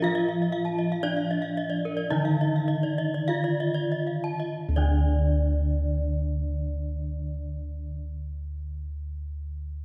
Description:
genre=Balinese gamelan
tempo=44-63 BPM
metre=4/4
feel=straight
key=unclear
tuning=A4 = 441 Hz
part: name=gamelan-type bronze metallophone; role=melody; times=0.0-8.0 s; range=D4 to F4-30c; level=-34 LUFS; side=equal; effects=none
part: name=gamelan-type bronze metallophone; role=accompaniment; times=0.0-8.0 s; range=D3 to F3-30c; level=-34 LUFS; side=equal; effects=none
part: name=gamelan-type bronze metallophone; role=arpeggios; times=0.0-8.0 s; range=D5 to A5-30c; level=-37 LUFS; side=equal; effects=none
part: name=gamelan-type bossed gongs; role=bass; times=0.0-7.9 s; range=D2 to F4-30c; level=-30 LUFS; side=equal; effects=none
part: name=gamelan-type bronze metallophone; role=arpeggios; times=0.3-8.0 s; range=Bb4-20c to A5-30c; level=-38 LUFS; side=equal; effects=none
room=wet concert hall reverb, RT60 2.2 s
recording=heard from further back in the room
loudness=-28 LUFS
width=mono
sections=0.0-4.6 A section; 4.6-9.8 B section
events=slowing down 0.0-4.6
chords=none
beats=| 0.04 1.03 2.11 3.28 | 4.56 5.91 7.25

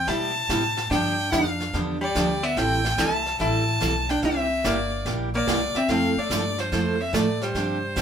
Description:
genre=country, western swing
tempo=145 BPM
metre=4/4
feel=swing 67% on 8ths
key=C major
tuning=A4 = 443 Hz
part: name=clear fiddle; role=melody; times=0.0-8.0 s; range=C5 to A5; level=-26 LUFS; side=left 1 dB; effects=none
part: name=archtop guitar, miked and amplified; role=second line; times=0.0-8.0 s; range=F3 to E4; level=-28 LUFS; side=equal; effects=none
part: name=upright bass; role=bass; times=0.0-8.0 s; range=G1 to B2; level=-30 LUFS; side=equal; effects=none
part: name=picked steel-string acoustic guitar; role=accompaniment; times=0.1-8.0 s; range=C3 to A4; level=-27 LUFS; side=right 2 dB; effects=none
part: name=jazz brush drum kit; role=drums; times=0.1-8.0 s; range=brushed snare drum, hi-hat, snare drum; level=-32 LUFS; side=right 1 dB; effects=none
room=wet small room ambience, RT60 0.5 s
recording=band playing live in one room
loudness=-21 LUFS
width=side -8 dB against mid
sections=0.0-8.0 A section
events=none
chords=0.0 Cmaj7; 0.9 G7; 2.6 Am9; 4.2 C7; 5.9 Fmaj7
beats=0.08 0.49 | 0.91 1.32 1.74 2.15 | 2.57 2.98 3.40 3.81 | 4.23 4.64 5.06 5.47 | 5.89 6.30 6.72 7.13 | 7.55 7.96

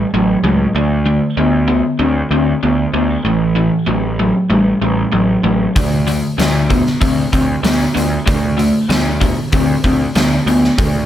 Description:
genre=blues rock power trio and southern rock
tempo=96 BPM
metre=4/4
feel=straight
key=unclear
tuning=A4 = 440 Hz
part: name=crunchy overdriven guitar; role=riff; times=0.0-11.1 s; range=A2 to C4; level=-15 LUFS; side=equal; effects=none
part: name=fuzz picked electric bass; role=bass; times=0.0-11.1 s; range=A1 to D2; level=-17 LUFS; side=equal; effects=overdrive
part: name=huge arena drum kit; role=drums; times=5.8-10.9 s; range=hi-hat, kick drum, snare drum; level=-17 LUFS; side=equal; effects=none
room=moderate studio reverb, RT60 0.9 s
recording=none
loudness=-12 LUFS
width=side -11 dB against mid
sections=0.0-11.1 A section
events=none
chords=0.0 A7; 0.8 D5; 3.3 A5; 5.8 D5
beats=0.13 | 0.75 1.38 2.00 2.63 | 3.25 3.88 4.51 5.13 | 5.76 6.39 7.01 7.64 | 8.27 8.90 9.52 10.15 | 10.78

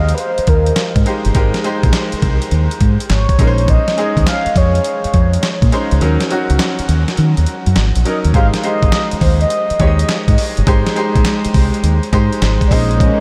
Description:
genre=R&B, new jack swing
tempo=103 BPM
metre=4/4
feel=swing 67% on 16ths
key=Ab major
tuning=A4 = 440 Hz
part: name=mellow horn-like synth lead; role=melody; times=0.0-13.2 s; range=Bb4 to F5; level=-23 LUFS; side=equal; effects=chorus, analog delay
part: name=bright grand piano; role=accompaniment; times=0.0-13.2 s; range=Gb3 to Eb5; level=-22 LUFS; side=equal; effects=none
part: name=deep dub fingered electric bass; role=bass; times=0.0-13.1 s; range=G1 to Eb3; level=-16 LUFS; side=equal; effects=none
part: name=dusty soul sampler-style drum kit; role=drums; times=0.1-13.2 s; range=handclaps, hi-hat, kick drum, snare drum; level=-19 LUFS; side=equal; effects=none
part: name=warm chamber string section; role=sustained chords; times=13.0-13.2 s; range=Ab3 to Db4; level=-19 LUFS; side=equal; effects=none
room=moderate huge ambient reverb, RT60 6.3 s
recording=dreamy mix soaked in reverb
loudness=-14 LUFS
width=mono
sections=0.0-8.3 A section; 8.3-13.2 B section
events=kick muted 6.0-8.3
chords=0.0 Abmaj7; 3.4 Bbm11; 6.0 Ebm7; 8.3 Abmaj7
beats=0.18 0.77 | 1.35 1.93 2.52 3.10 | 3.68 4.26 4.84 5.43 | 6.01 6.59 7.17 7.76 | 8.34 8.92 9.51 10.09 | 10.67 11.25 11.84 12.42 | 13.00

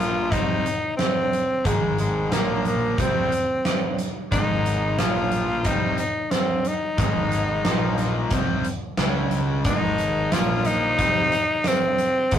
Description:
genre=classic rock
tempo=90 BPM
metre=4/4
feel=straight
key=Ab major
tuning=A4 = 439 Hz
part: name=raspy tenor saxophone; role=melody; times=0.0-12.4 s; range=Ab3 to F4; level=-23 LUFS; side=left 1 dB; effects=none
part: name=cranked stack guitar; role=riff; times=0.0-12.4 s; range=Ab2 to Db4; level=-28 LUFS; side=left 3 dB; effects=overdrive
part: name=crunchy overdriven guitar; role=riff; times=0.0-12.4 s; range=Ab2 to Db4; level=-30 LUFS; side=right 4 dB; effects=none
part: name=growling fingered electric bass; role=bass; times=0.0-12.4 s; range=Ab1 to Db2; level=-30 LUFS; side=right 1 dB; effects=overdrive
part: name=big rock drum kit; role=drums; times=0.0-12.4 s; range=hi-hat, kick drum, snare drum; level=-25 LUFS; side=right 1 dB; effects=none
part: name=tambourine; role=percussion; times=10.0-12.1 s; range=none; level=-44 LUFS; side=right 1 dB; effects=none
room=moderate booth ambience, RT60 0.2 s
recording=rough rehearsal-room recording, tube saturation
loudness=-20 LUFS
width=side -9 dB against mid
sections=0.0-12.4 A section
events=none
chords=0.3 Ab; 2.3 Bb5; 3.0 Ab; 5.0 Bb5; 5.7 Ab; 7.7 Bb5; 8.3 Cm; 9.0 Db5; 9.7 Ab5; 10.3 Bb5; 11.0 Ab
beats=0.32 0.98 | 1.65 2.32 2.98 3.65 | 4.32 4.99 5.65 6.32 | 6.99 7.66 8.32 8.99 | 9.66 10.33 10.99 11.66 | 12.33

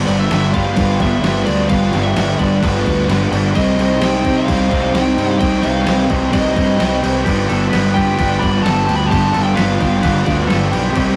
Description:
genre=rock, shoegaze and dream pop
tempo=130 BPM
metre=4/4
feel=straight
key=G mixolydian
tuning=A4 = 440 Hz
part: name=chorused pulse-width pad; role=sustained chords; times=0.0-11.2 s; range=Eb4 to G5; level=-27 LUFS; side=equal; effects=none
part: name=overdriven electric guitar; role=riff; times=0.0-11.2 s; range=G2 to Eb4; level=-22 LUFS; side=equal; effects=none
part: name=thick fuzz guitar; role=riff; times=0.0-11.2 s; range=G2 to C4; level=-22 LUFS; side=equal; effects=distortion
part: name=fuzz fingered electric bass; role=bass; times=0.0-11.2 s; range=G1 to C3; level=-22 LUFS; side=equal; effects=overdrive
part: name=fuzz lead guitar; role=melody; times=0.1-10.7 s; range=B4 to B5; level=-24 LUFS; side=equal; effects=distortion
part: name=detuned 8-bit digital drum machine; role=drums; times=0.1-11.1 s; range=crash cymbal, kick drum, snare drum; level=-25 LUFS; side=equal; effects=overdrive
part: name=twangy electric guitar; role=arpeggios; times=7.2-11.2 s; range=G4 to D5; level=-27 LUFS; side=equal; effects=none
room=wet small room reverb, RT60 0.6 s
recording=rough rehearsal-room recording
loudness=-15 LUFS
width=mono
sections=0.0-11.2 A section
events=none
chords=0.0 G7; 3.5 Cm; 7.3 G7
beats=0.30 0.77 1.23 | 1.70 2.16 2.62 3.09 | 3.55 4.01 4.47 4.94 | 5.40 5.86 6.33 6.79 | 7.25 7.71 8.18 8.64 | 9.10 9.57 10.03 10.49 | 10.96

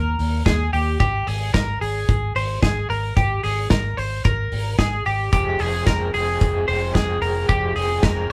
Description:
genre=jangly indie pop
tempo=111 BPM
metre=4/4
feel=straight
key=unclear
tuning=A4 = 440 Hz
part: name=twelve-string electric guitar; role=arpeggios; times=0.0-8.3 s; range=G4 to C5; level=-26 LUFS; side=equal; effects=none
part: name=vintage muted fingered electric bass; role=bass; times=0.0-8.3 s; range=F1 to Eb2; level=-27 LUFS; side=equal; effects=none
part: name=loose indie drum kit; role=drums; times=0.2-8.2 s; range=hi-hat, kick drum, snare drum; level=-25 LUFS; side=equal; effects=none
part: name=raw garage guitar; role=accompaniment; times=5.3-8.3 s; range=F2 to Ab4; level=-28 LUFS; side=equal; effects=overdrive, tremolo
room=moderate studio reverb, RT60 0.6 s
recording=band playing live in one room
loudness=-21 LUFS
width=mono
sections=0.0-8.3 A section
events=none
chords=0.0 Eb; 1.0 Ab; 5.3 Fm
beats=0.46 | 1.00 1.54 2.08 2.62 | 3.17 3.71 4.25 4.79 | 5.33 5.87 6.41 6.95 | 7.49 8.04

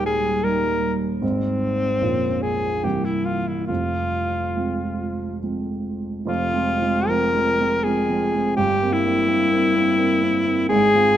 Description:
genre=classical, romantic duo for alto saxophone and grand piano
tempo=68-86 BPM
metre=3/4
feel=rubato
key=F minor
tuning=A4 = 439 Hz
part: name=clear alto saxophone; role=melody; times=0.0-11.2 s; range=C4 to Bb4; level=-21 LUFS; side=left 2 dB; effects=none
part: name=dark baby grand piano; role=accompaniment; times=0.0-11.2 s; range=Bb0 to F4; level=-22 LUFS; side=right 2 dB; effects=none
room=moderate scoring stage reverb, RT60 2.0 s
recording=close, detailed microphones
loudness=-19 LUFS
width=side -11 dB against mid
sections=0.0-6.3 A section; 6.3-11.2 B section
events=none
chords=0.0 Eb; 1.2 Ab; 2.0 Bbm; 2.8 C7; 3.7 Fm; 8.6 C7/G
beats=0.45 | 1.22 2.03 2.84 | 3.69 4.56 5.43 | 6.28 7.10 7.85 | 8.58 9.29 10.00 | 10.71

